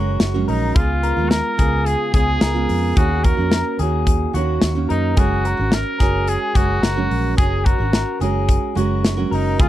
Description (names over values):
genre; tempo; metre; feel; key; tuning
jangly indie pop; 109 BPM; 4/4; straight; F# major; A4 = 441 Hz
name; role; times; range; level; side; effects
picked steel-string acoustic guitar; accompaniment; 0.0-9.7 s; C#3 to A#4; -24 LUFS; right 7 dB; none
electric guitar through a small old amp; arpeggios; 0.0-9.7 s; F#4 to A#4; -25 LUFS; left 5 dB; none
vintage muted fingered electric bass; bass; 0.0-9.7 s; F#1 to F#2; -21 LUFS; equal; none
modern studio drum kit; drums; 0.2-9.7 s; hi-hat, kick drum, snare drum; -18 LUFS; equal; none
clear trumpet; melody; 0.5-9.7 s; D#4 to A#4; -23 LUFS; right 1 dB; slapback echo
room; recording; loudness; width
little or no reverb; dry, close 1970s-style studio recording; -16 LUFS; side -13 dB against mid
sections
0.0-9.7 A section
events
none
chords
0.0 F#add9; 0.8 C#7; 3.0 D#m7; 5.2 F#add9